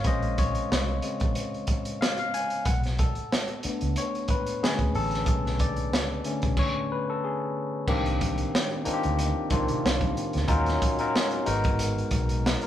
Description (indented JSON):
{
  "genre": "R&B, neo-soul",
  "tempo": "92 BPM",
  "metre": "4/4",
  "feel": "swing 56% on 16ths",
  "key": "unclear",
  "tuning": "A4 = 439 Hz",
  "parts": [
    { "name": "overdriven tine electric piano", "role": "accompaniment", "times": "0.0-12.7 s", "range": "Db3 to Ab5", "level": "-28 LUFS", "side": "left 2 dB", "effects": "none" },
    { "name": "crunchy breakbeat drum kit", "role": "drums", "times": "0.0-12.7 s", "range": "crash cymbal, hi-hat, kick drum, snare drum", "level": "-27 LUFS", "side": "right 1 dB", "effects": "none" },
    { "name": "vintage muted fingered electric bass", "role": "bass", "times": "0.1-12.5 s", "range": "Ab1 to C3", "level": "-29 LUFS", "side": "equal", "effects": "none" }
  ],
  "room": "light reverb",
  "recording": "band playing live in one room",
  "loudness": "-24 LUFS",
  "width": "side -11 dB against mid",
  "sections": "0.0-7.9 A section; 7.9-12.7 B section",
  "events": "tine electric piano solo 0.0-7.9",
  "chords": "0.0 Bbm9; 2.7 Bm9; 7.9 Cm9; 10.5 Ebm9; 11.5 Abm9",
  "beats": "| 0.05 0.70 1.35 2.00 | 2.66 3.31 3.96 4.61 | 5.27 5.92 6.57 7.22 | 7.88 8.53 9.18 9.83 | 10.48 11.13 11.79 12.44"
}